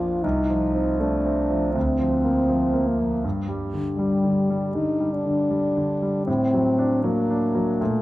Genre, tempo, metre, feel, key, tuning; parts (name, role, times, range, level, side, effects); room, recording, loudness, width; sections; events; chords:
classical, romantic duo for French horn and grand piano; 79 BPM; 4/4; rubato; A4 = 440 Hz
mellow French horn; melody; 0.0-8.0 s; G3 to F4; -22 LUFS; left 1 dB
clear concert grand piano; accompaniment; 0.0-8.0 s; C2 to D4; -24 LUFS; right 1 dB
moderate recital hall reverb, RT60 1.7 s; close, detailed microphones; -20 LUFS; side -17 dB against mid
0.0-8.0 A section
0.2 F7/C; 1.8 Bb/D; 3.2 G5; 6.3 D7/A